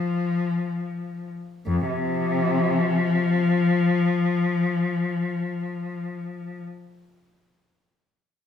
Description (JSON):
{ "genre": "classical, baroque-style suite movement for unaccompanied cello", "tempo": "free time", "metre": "none", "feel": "none", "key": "unclear", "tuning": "A4 = 440 Hz", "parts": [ { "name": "warm cello", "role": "solo", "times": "0.0-6.6 s", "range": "F2 to F3", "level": "-22 LUFS", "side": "left 3 dB", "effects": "none" } ], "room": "wet stone room reverb, RT60 1.3 s", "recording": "minimal, uncompressed stereo recording", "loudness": "-21 LUFS", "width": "side -8 dB against mid", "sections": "0.0-1.7 A section; 1.7-5.9 B section", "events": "slowing down 0.0-1.7", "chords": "none" }